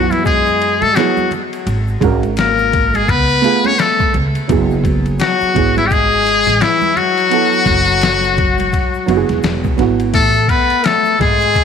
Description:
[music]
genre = hip hop, jazz-hop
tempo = 85 BPM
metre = 4/4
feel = swing 60% on 16ths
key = F# minor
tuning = A4 = 440 Hz
[part]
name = trumpet with metal mute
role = melody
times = 0.0-11.6 s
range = E4 to C#5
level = -15 LUFS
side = left 2 dB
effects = tape echo
[part]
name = breathy trombone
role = second line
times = 0.0-11.6 s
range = E3 to C#4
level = -20 LUFS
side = left 9 dB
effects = tape echo
[part]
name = dark upright piano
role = accompaniment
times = 0.0-10.1 s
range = F#3 to A#4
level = -19 LUFS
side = right 11 dB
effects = none
[part]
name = upright bass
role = bass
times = 0.0-11.5 s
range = E1 to G#2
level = -19 LUFS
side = right 1 dB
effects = none
[part]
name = trip hop sampler-style drum kit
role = drums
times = 0.1-11.6 s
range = hi-hat, kick drum, ride cymbal, snare drum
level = -20 LUFS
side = left 2 dB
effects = none
[part]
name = congas and egg shaker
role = percussion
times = 0.1-11.6 s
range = none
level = -28 LUFS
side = right 12 dB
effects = none
[sound]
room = moderate echo chamber reverb, RT60 2.2 s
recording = 1960s-style stereo with parts hard left and right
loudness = -12 LUFS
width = side -7 dB against mid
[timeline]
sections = 0.0-10.1 A section; 10.1-11.6 B section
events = none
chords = 0.0 Eadd9; 1.7 G#9sus4; 3.1 C#7b13; 4.5 F#m9; 10.1 Amaj7(no3)

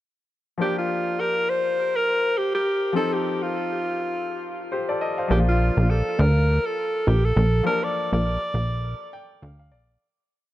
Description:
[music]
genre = afrobeats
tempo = 102 BPM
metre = 4/4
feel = swing 58% on 16ths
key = unclear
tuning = A4 = 440 Hz
[part]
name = warm alto saxophone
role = melody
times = 0.6-9.3 s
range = F4 to D5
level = -24 LUFS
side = equal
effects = tape echo
[part]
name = clear baby grand piano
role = accompaniment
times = 0.6-10.0 s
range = F3 to G5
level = -29 LUFS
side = left 4 dB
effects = none
[part]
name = plucky analog bass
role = bass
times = 5.3-10.0 s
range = Bb1 to D2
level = -19 LUFS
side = equal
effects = none
[sound]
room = light reverb, small room ambience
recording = echo-heavy mix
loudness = -21 LUFS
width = side -14 dB against mid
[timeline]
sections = 0.6-10.0 verse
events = fade-out 7.7-10.0; grand piano fill 8.8-10.0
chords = 0.6 Gm7; 3.0 F7; 5.3 Bbmaj7

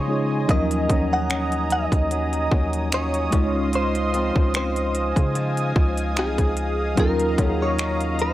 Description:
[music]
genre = contemporary R&B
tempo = 74 BPM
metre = 4/4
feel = swing 54% on 16ths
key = Eb dorian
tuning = A4 = 440 Hz
[part]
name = direct-recorded clean electric guitar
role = melody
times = 0.0-8.3 s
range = Ab4 to Gb5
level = -27 LUFS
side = equal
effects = analog chorus
[part]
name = mellow tine electric piano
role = accompaniment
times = 0.0-8.3 s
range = F3 to Eb5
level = -27 LUFS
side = equal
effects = medium stereo tremolo
[part]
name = warm analog pad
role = sustained chords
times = 0.0-8.3 s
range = Eb5 to Eb6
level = -28 LUFS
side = right 1 dB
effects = chorus, tremolo, sidechain pumping
[part]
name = flamenco guitar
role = arpeggios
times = 0.0-8.3 s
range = Db3 to F4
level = -31 LUFS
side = left 3 dB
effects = none
[part]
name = long sustained 808-style bass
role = bass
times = 0.0-8.3 s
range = C2 to Db3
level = -26 LUFS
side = equal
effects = none
[part]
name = trap drum kit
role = drums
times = 0.5-8.3 s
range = finger snaps, hi-hat, kick drum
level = -22 LUFS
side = equal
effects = none
[sound]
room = little or no reverb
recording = dry, gritty hardware recording, transformer saturation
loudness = -19 LUFS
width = side -14 dB against mid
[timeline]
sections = 0.0-8.3 A section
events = break 0.0-0.5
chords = 0.5 Ebm9; 3.3 Dbmaj9; 7.0 Ebm9

